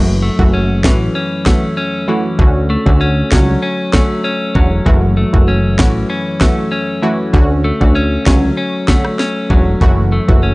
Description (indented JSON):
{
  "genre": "dancehall",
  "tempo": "97 BPM",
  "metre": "4/4",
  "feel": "straight",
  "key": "F# minor",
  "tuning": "A4 = 439 Hz",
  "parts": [
    { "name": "analog pluck", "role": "accompaniment", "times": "0.0-10.5 s", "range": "D3 to F#4", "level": "-20 LUFS", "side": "right 1 dB", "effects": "chorus" },
    { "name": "semi-hollow electric guitar", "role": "arpeggios", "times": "0.0-10.5 s", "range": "F#2 to C#4", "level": "-17 LUFS", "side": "left 1 dB", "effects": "spring reverb" },
    { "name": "plucky analog bass", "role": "bass", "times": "0.0-10.5 s", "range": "E1 to D2", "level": "-15 LUFS", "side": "equal", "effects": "none" },
    { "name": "island pop drum kit", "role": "drums", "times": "0.4-10.4 s", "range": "kick drum, rim click, snare drum", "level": "-12 LUFS", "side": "equal", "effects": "none" }
  ],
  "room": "little or no reverb",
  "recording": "dry, gritty hardware recording, nothing above 10.3 kHz",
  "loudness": "-11 LUFS",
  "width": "side -23 dB against mid",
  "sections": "0.0-10.5 A section",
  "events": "none",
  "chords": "0.0 F#m7; 2.4 Dmaj7; 4.9 F#m7; 7.3 Dmaj7; 9.8 F#m7",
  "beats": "0.53 1.15 1.77 | 2.39 3.01 3.63 4.25 | 4.86 5.48 6.10 6.72 | 7.34 7.96 8.58 9.19 | 9.81 10.43"
}